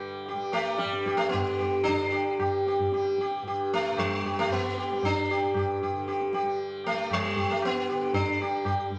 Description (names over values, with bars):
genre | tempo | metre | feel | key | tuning
indian classical, Hindustani | 114 BPM | 3/4 | straight | G raga hamsadhwani | A4 = 440 Hz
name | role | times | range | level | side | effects
tanpura | drone | 0.0-9.0 s | G2 to G3 | -40 LUFS | equal | none
sitar | melody | 0.3-8.9 s | G3 to G4 | -29 LUFS | equal | none
tabla | percussion | 0.3-9.0 s | none | -38 LUFS | equal | none
room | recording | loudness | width
wet studio reverb, RT60 0.9 s | none | -28 LUFS | mono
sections
0.0-1.9 A section; 1.9-9.0 A section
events
speeding up 0.0-9.0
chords
none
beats
| 0.26 0.80 1.33 | 1.86 2.39 2.92 | 3.45 3.98 4.50 | 5.03 5.55 6.07 | 6.59 7.11 7.62 | 8.14 8.65